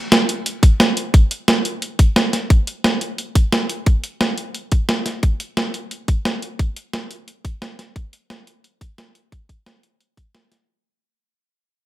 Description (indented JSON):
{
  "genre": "drum and bass",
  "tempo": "176 BPM",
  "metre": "4/4",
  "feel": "straight",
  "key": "none",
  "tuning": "none",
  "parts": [
    { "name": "breakbeat sampler-style drum kit", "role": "drums", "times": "0.1-10.6 s", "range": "hi-hat, snare drum", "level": "-18 LUFS", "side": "right 1 dB", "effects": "none" },
    { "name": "electronic kick drum", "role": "drums", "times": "0.6-10.2 s", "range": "none", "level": "-14 LUFS", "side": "equal", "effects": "none" }
  ],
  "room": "light reverb, digital ambience",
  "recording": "none",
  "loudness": "-16 LUFS",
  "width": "side -15 dB against mid",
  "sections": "0.0-10.7 A section",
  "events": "fade-out 0.0-10.7",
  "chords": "none"
}